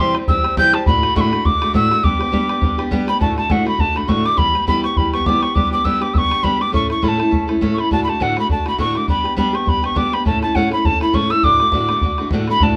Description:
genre	celtic folk, Celtic reel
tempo	205 BPM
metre	4/4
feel	swing 56% on 8ths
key	G major, D major from 3.2 s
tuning	A4 = 440 Hz
part	mellow wooden whistle	melody	0.0-12.8 s	F#5 to G6	-20 LUFS	equal	none
part	picked steel-string acoustic guitar	accompaniment	0.0-12.8 s	D2 to A4	-22 LUFS	equal	none
part	bodhran	percussion	0.1-12.7 s	none	-23 LUFS	equal	none
room	moderate small room reverb, RT60 0.5 s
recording	none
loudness	-17 LUFS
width	mono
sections	0.0-3.2 A section; 3.2-12.6 B section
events	none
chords	0.0 C; 0.9 D; 2.0 G; 3.2 D; 4.4 Em; 5.6 G; 6.7 A; 7.9 D; 9.1 G; 10.3 A; 11.4 D

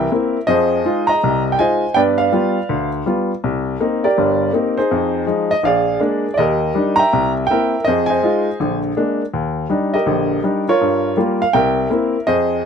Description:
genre	solo jazz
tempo	163 BPM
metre	4/4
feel	swing 63% on 8ths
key	Eb major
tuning	A4 = 440 Hz
part	clear upright piano	solo	0.0-12.7 s	G1 to Bb5	-15 LUFS	equal	none
room	light reverb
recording	close, detailed microphones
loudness	-15 LUFS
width	side -7 dB against mid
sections	0.0-9.3 A section; 9.3-12.7 A section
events	none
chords	0.5 Fm7; 2.0 G7; 3.4 Cm7; 4.9 Fm7; 5.6 Bb7; 6.4 Ebmaj7; 7.1 C7; 7.8 Fm7; 8.6 Bb7; 9.3 Ebmaj7; 10.8 Gm7b5; 11.5 C7

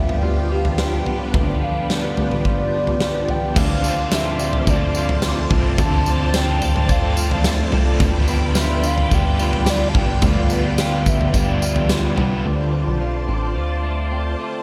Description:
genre	dream pop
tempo	108 BPM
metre	4/4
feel	straight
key	D dorian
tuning	A4 = 438 Hz
part	hollow clarinet-like synth lead	melody	0.0-12.2 s	D5 to A5	-29 LUFS	equal	chorus, phaser, tape echo
part	phased string machine	sustained chords	0.0-14.6 s	F3 to A5	-28 LUFS	equal	ensemble chorus, phaser
part	electric guitar at the edge of break-up	arpeggios	0.0-14.6 s	D3 to F4	-30 LUFS	equal	lush chorus, tape echo
part	plucky analog bass	bass	0.0-14.4 s	A1 to D2	-24 LUFS	equal	none
part	huge arena drum kit	drums	0.1-12.3 s	crash cymbal, kick drum, snare drum, tambourine, toms	-23 LUFS	equal	none
part	crunchy overdriven guitar	accompaniment	3.5-13.0 s	D3 to A4	-28 LUFS	equal	tremolo, subtle chorus
room	moderate huge ambient reverb, RT60 7.6 s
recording	dreamy mix soaked in reverb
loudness	-19 LUFS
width	mono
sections	0.0-3.6 A section; 3.6-12.4 B section; 12.4-14.6 C section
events	none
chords	0.0 G7; 3.6 Dm7; 8.0 G7; 12.4 Dm7

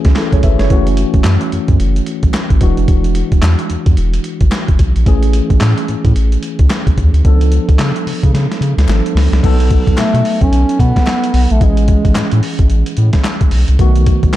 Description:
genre	R&B, new jack swing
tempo	110 BPM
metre	4/4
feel	swing 60% on 16ths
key	unclear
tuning	A4 = 441 Hz
part	bright tine electric piano	accompaniment	0.0-14.4 s	D#3 to E5	-19 LUFS	equal	medium stereo tremolo
part	boom bap sampler-style drum kit	drums	0.0-14.4 s	crash cymbal, handclaps, hi-hat, kick drum, snare drum	-14 LUFS	equal	none
part	round analog bass	bass	0.1-14.4 s	E1 to C#3	-12 LUFS	equal	none
part	group handclap	percussion	1.2-14.4 s	none	-33 LUFS	left 6 dB	none
part	breathy bass clarinet	melody	10.0-12.4 s	G#3 to C#4	-17 LUFS	equal	ping-pong delay
room	little or no reverb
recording	dark, warm production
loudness	-10 LUFS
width	side -14 dB against mid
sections	0.0-9.4 A section; 9.4-14.4 B section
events	drum fill 8.3-9.4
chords	0.0 Amaj7; 0.7 F#m7; 2.6 E9; 5.1 Amaj7; 7.2 C#7b9b13; 9.4 B7; 11.6 Amaj7; 13.8 B7

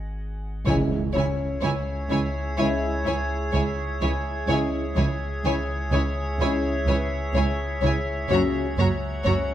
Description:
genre	cinematic, suspense film score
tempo	63 BPM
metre	4/4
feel	straight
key	C# dorian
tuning	A4 = 440 Hz
part	saturated sub bass	drone	0.0-9.5 s	G#1 to C#2	-30 LUFS	equal	none
part	clear concert grand piano	texture	0.0-9.5 s	C#4 to E5	-34 LUFS	left 2 dB	none
part	warm symphonic violin section	melody	0.7-9.3 s	G#5 to A#5	-35 LUFS	left 2 dB	none
part	warm symphonic violin section	second line	0.7-9.3 s	C#5	-30 LUFS	left 3 dB	none
part	warm studio viola section	accompaniment	0.7-9.3 s	E4 to F#4	-34 LUFS	right 1 dB	none
part	dark French horn section	sustained chords	0.7-8.7 s	C#4 to F#4	-29 LUFS	left 3 dB	none
part	drifting glass-harmonics texture	sustained chords	1.4-9.5 s	G#4 to A#5	-31 LUFS	equal	chorus, built-in reverb
part	warm trombone section	sustained chords	0.7-8.7 s	A#2 to G#3	-34 LUFS	right 4 dB	none
part	dark studio double bass section	bass	0.7-9.3 s	F#1 to C#2	-28 LUFS	right 2 dB	none
part	dark symphonic cello section	bass	0.7-9.3 s	C#2 to F#2	-30 LUFS	right 2 dB	none
part	timpani	percussion	0.7-2.1 s	C#3	-29 LUFS	right 1 dB	none
part	impact	sound effects	0.7-4.5 s	none	-34 LUFS	equal	none
room	moderate scoring stage reverb, RT60 1.7 s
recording	none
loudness	-22 LUFS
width	side -11 dB against mid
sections	0.7-9.5 A section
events	break 0.0-0.7; impact 0.7-4.5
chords	0.0 G#7(no3); 0.7 C#m; 8.3 F#

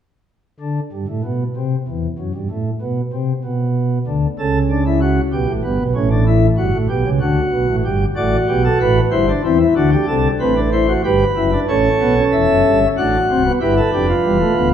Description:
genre	classical, baroque-style 4-part fugue for pipe organ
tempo	95 BPM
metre	3/4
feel	straight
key	G major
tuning	A4 = 440 Hz
part	pipe organ, sparkling flutes	solo	0.6-14.7 s	C1 to F#5	-14 LUFS	equal	none
room	wet concert hall reverb, RT60 1.8 s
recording	minimal, uncompressed stereo recording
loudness	-14 LUFS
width	side -9 dB against mid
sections	0.3-11.7 A section; 11.7-14.7 B section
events	none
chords	0.3 N.C.; 4.1 D; 5.3 G; 6.0 A7; 7.2 D; 7.9 G; 9.1 C/G; 9.8 D7; 11.0 G; 11.7 A7; 13.0 D/A; 13.6 G7

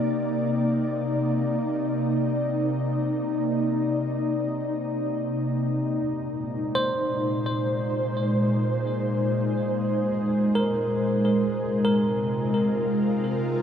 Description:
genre	ambient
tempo	free time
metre	none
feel	none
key	C minor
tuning	A4 = 440 Hz
part	ethereal airy pad	sustained chords	0.0-13.6 s	Bb2 to D5	-23 LUFS	equal	ensemble chorus, built-in reverb
part	bell-like tine electric piano	arpeggios	6.8-13.6 s	Bb4 to C5	-29 LUFS	equal	ping-pong delay
room	wet huge ambient reverb, RT60 8.8 s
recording	none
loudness	-23 LUFS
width	side -8 dB against mid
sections	0.0-13.6 A section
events	filter sweep on ambient pad 0.0-13.6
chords	0.0 Cm9; 5.8 Bb9sus4; 11.4 Ab6/C

